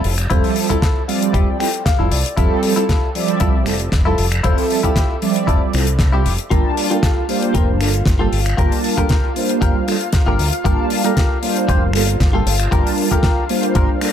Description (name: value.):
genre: nu-disco, nu disco.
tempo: 116 BPM.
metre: 4/4.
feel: straight.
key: G dorian.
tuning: A4 = 441 Hz.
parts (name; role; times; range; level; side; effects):
direct-recorded clean electric guitar; riff; 0.0-14.1 s; E4 to G5; -24 LUFS; left 4 dB; lush chorus, dub echo.
fingered electric bass with an envelope filter; bass; 0.0-13.9 s; F1 to D2; -19 LUFS; equal; none.
damped 70s drum kit; drums; 0.0-14.1 s; finger snaps, hi-hat, snare drum; -23 LUFS; left 2 dB; studio ambience.
mellow synth brass; accompaniment; 0.3-14.1 s; F3 to A5; -20 LUFS; right 3 dB; chorus, sidechain pumping, dub echo.
electronic kick drum; drums; 0.3-13.9 s; none; -17 LUFS; equal; studio ambience.
lush unison pad; sustained chords; 6.5-14.1 s; F4 to F5; -26 LUFS; left 1 dB; chorus, sidechain pumping.
room: light reverb, studio reverb.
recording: echo-heavy mix.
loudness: -14 LUFS.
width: side -9 dB against mid.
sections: 0.0-14.1 A section.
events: clean electric guitar fill 0.8-2.4.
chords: 0.0 Fmaj7; 6.5 Gm7.